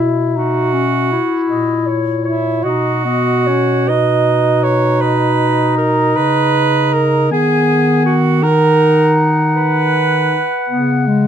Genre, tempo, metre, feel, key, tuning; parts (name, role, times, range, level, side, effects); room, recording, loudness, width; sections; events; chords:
classical, lyrical piece for single-reed quartet; 53 BPM (dotted quarters); 12/8; rubato; B major; A4 = 440 Hz
mellow clarinet; melody; 0.0-11.3 s; B4 to G#5; -21 LUFS; left 8 dB
bright alto saxophone; second line; 0.0-11.0 s; E4 to D#5; -16 LUFS; right 6 dB
mellow clarinet; accompaniment; 0.0-11.3 s; G#3 to E4; -17 LUFS; left 2 dB
dark bass clarinet; bass; 0.0-11.3 s; A#2 to D#3; -18 LUFS; equal
moderate studio reverb, RT60 0.6 s; minimal, uncompressed stereo recording; -12 LUFS; side -8 dB against mid
0.0-11.3 A section
0.0 F#7/B; 2.6 B; 7.3 B/D#